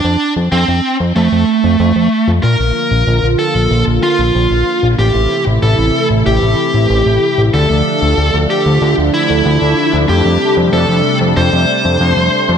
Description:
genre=synthwave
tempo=94 BPM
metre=4/4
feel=straight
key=unclear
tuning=A4 = 441 Hz
part: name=dark smooth lead guitar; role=melody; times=0.0-12.5 s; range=A3 to C5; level=-14 LUFS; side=right 1 dB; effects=overdrive, ping-pong delay
part: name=fat analog bass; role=bass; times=0.0-12.6 s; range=A1 to F2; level=-14 LUFS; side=equal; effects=none
part: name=warm analog pad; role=sustained chords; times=2.4-12.6 s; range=C3 to F4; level=-16 LUFS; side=equal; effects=chorus, phaser
room=moderate lush hall reverb, RT60 2.8 s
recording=none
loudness=-10 LUFS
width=side -8 dB against mid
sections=0.0-2.4 A section; 2.4-12.6 B section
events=none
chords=0.0 F; 2.4 Bb; 5.0 Am; 7.5 Dm; 10.1 Fadd9

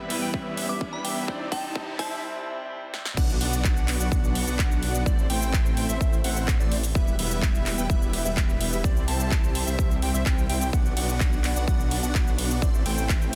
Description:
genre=EDM, festival progressive house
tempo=127 BPM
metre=4/4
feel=straight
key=unclear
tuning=A4 = 440 Hz
part: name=bright concert grand piano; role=accompaniment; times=0.0-3.2 s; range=C3 to C5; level=-39 LUFS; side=equal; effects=sidechain pumping, tape echo
part: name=lush unison pad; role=sustained chords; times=0.1-13.4 s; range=C2 to B4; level=-40 LUFS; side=equal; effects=none
part: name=plucky unison lead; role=arpeggios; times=0.0-13.4 s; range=D5 to A5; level=-38 LUFS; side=equal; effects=sidechain pumping, tape echo
part: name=dense compressed supersaw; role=riff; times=0.0-13.4 s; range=G3 to A5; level=-34 LUFS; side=equal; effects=sidechain pumping, tape echo
part: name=riser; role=sound effects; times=0.0-2.2 s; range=none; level=-41 LUFS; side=equal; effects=none
part: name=big-room dance drum kit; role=drums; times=0.1-13.4 s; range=cabasa, crash cymbal, handclaps, hi-hat, ride cymbal, snare drum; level=-33 LUFS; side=equal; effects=studio reverb
part: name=electronic kick drum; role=drums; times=0.3-13.2 s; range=none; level=-26 LUFS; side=equal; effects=studio reverb
part: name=glassy synth bell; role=melody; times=0.7-2.2 s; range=G5 to D6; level=-38 LUFS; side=equal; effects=chorus, phaser, tape echo
part: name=detuned saw bass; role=bass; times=3.2-13.4 s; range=E1 to C2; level=-30 LUFS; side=equal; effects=sidechain pumping
room=light reverb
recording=dense, heavily limited modern master, high-pass filter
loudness=-25 LUFS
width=mono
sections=0.0-3.2 A section; 3.2-13.4 B section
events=build-up 0.0-3.2; drum fill 0.0-2.2, 2.9; riser 0.0-2.2; break 2.2-3.2; drop 3.2-13.4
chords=0.0 Em; 1.3 C; 3.2 Bm; 5.1 Am; 7.0 Em; 8.8 C; 10.7 Bm; 12.6 Am

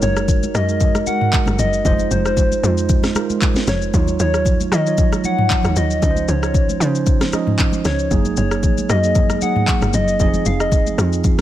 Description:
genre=amapiano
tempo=115 BPM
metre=4/4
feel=swing 55% on 16ths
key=unclear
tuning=A4 = 440 Hz
part: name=soft struck synth lead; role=melody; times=0.0-11.1 s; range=C5 to Gb5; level=-22 LUFS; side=left 3 dB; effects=chorus, ping-pong delay
part: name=mellow tine electric piano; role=accompaniment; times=0.0-11.4 s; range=F3 to Eb5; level=-21 LUFS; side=right 7 dB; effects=none
part: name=tight log drum bass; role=bass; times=0.0-11.4 s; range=F1 to Eb3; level=-20 LUFS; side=equal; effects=none
part: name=afro-pop drum kit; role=drums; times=0.0-11.4 s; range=handclaps, kick drum, rim click, shaker, snare drum, toms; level=-18 LUFS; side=left 1 dB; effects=none
part: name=congas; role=percussion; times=0.3-11.4 s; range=none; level=-28 LUFS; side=left 3 dB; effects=none
room=little or no reverb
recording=none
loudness=-15 LUFS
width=side -13 dB against mid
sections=0.0-11.4 A section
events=none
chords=0.0 Gb69; 1.9 Fm7; 3.9 Ebm9; 6.0 Dbmaj9; 8.1 Gb69; 10.2 Fm7

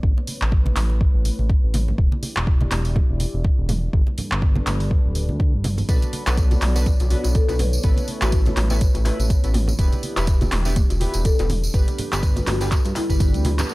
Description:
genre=afro house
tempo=123 BPM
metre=4/4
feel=swing 57% on 16ths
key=unclear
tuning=A4 = 440 Hz
part: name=dark analog pad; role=sustained chords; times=0.0-13.7 s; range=G3 to D5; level=-33 LUFS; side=left 1 dB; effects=chorus, sidechain pumping
part: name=smooth synth bass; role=bass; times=0.0-13.6 s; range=D1 to G2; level=-22 LUFS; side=equal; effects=sidechain pumping
part: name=electronic kick drum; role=drums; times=0.0-13.3 s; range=none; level=-19 LUFS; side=equal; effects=none
part: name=congas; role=percussion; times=0.2-13.7 s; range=none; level=-30 LUFS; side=right 1 dB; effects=none
part: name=deep house drum kit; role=drums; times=0.3-13.7 s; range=handclaps, hi-hat, toms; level=-28 LUFS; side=equal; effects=overdrive
part: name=warm analog keys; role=stabs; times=5.9-13.7 s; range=G3 to B4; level=-31 LUFS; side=right 2 dB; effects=chorus, sidechain pumping, low-pass filter, analog delay
part: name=tambourine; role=percussion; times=5.9-13.7 s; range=none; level=-35 LUFS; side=right 2 dB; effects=none
part: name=djembe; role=percussion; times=6.3-13.6 s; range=none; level=-32 LUFS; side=left 2 dB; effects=none
part: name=marimba with soft mallets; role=melody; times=7.4-13.4 s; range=E4 to B4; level=-29 LUFS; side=left 3 dB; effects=analog delay
room=small room reverb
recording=dry, gritty hardware recording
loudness=-18 LUFS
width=side -21 dB against mid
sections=0.0-13.7 A section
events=band accent 13.6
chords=0.0 Aadd9; 2.0 Em7; 3.9 G; 5.9 Bm7; 7.8 Aadd9; 9.8 Em7; 11.7 G

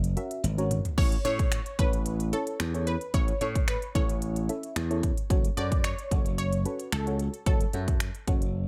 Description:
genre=dance-pop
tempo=111 BPM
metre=4/4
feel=straight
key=unclear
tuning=A4 = 440 Hz
part: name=analog pluck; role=melody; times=0.0-8.7 s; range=A4 to D5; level=-37 LUFS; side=equal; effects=chorus, plate reverb
part: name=slap bass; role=bass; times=0.0-8.7 s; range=F#1 to A2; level=-32 LUFS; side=equal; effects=sidechain pumping
part: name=industrial drum kit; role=drums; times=0.0-8.5 s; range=crash cymbal, finger snaps, hi-hat, kick drum, toms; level=-30 LUFS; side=equal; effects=none
part: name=deep mellow chord stab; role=accompaniment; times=0.2-8.6 s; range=C#4 to E5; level=-37 LUFS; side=equal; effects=chorus
room=light reverb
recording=none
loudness=-28 LUFS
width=mono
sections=0.0-8.7 A section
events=drum fill 0.4-1.0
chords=0.0 F#; 1.0 A; 5.3 F#m

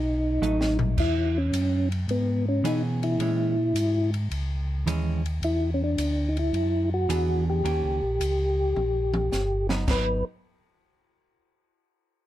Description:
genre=soul jazz organ trio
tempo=108 BPM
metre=4/4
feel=swing 69% on 8ths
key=G# minor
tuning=A4 = 440 Hz
part: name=percussive tonewheel organ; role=melody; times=0.0-10.2 s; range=B3 to B4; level=-26 LUFS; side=left 1 dB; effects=chorus vibrato, slow rotary speaker
part: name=mellow tonewheel organ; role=bass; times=0.0-10.2 s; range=G1 to B2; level=-27 LUFS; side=equal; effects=chorus vibrato, slow rotary speaker
part: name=hollow-body jazz guitar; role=accompaniment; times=0.4-10.2 s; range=D#3 to G#4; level=-29 LUFS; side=right 4 dB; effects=none
part: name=compact cocktail drum kit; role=drums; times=0.4-10.1 s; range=crash cymbal, hi-hat, kick drum, ride cymbal, snare drum, toms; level=-33 LUFS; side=left 1 dB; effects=none
room=little or no reverb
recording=close, detailed microphones, lossy compression artefacts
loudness=-23 LUFS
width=side -13 dB against mid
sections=1.0-9.9 A section; 9.9-12.1 B section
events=drum fill 0.4-1.0, 8.8-9.9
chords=0.0 B7; 1.0 E6; 3.2 A#m7b5; 5.4 E7; 7.6 D#7; 9.9 G#m7

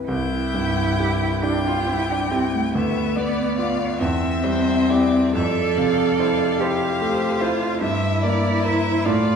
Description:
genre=classical, slow romantic movement for piano quartet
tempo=42-51 BPM (dotted quarters)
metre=6/8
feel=rubato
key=C major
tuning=A4 = 440 Hz
part: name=rich violin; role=second line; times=0.0-9.4 s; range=G4 to F5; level=-30 LUFS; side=left 2 dB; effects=none
part: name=clear concert grand piano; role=accompaniment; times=0.0-9.4 s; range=C2 to C5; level=-22 LUFS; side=equal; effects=none
part: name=rich violin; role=melody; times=0.1-9.4 s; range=C5 to G5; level=-28 LUFS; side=left 6 dB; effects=none
part: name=rich cello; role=second line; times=0.1-9.4 s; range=A3 to A4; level=-22 LUFS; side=right 2 dB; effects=none
room=wet recital hall reverb, RT60 1.4 s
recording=heard from further back in the room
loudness=-18 LUFS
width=side -6 dB against mid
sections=0.1-9.4 A section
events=none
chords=0.1 C; 2.7 Bdim/D; 4.0 C/E; 5.4 Fmaj7; 7.8 Edim/G

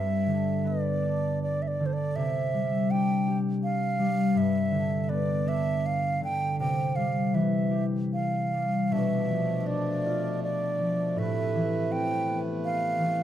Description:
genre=celtic folk, Celtic slow air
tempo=80 BPM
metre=3/4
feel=rubato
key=G mixolydian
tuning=A4 = 441 Hz
part: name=bright baroque flute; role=melody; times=0.0-13.2 s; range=C5 to G5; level=-30 LUFS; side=right 3 dB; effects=none
part: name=concert harp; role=accompaniment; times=0.0-13.2 s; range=G2 to G4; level=-27 LUFS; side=left 1 dB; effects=none
part: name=hand-pumped harmonium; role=sustained chords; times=8.9-13.2 s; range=B2 to B4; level=-36 LUFS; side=right 2 dB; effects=none
room=light reverb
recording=close, detailed microphones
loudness=-25 LUFS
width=side -11 dB against mid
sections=0.0-13.2 A section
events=none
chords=0.0 G; 2.2 Csus2; 4.4 G; 6.6 C; 8.9 Bm7b5; 11.2 Amadd9

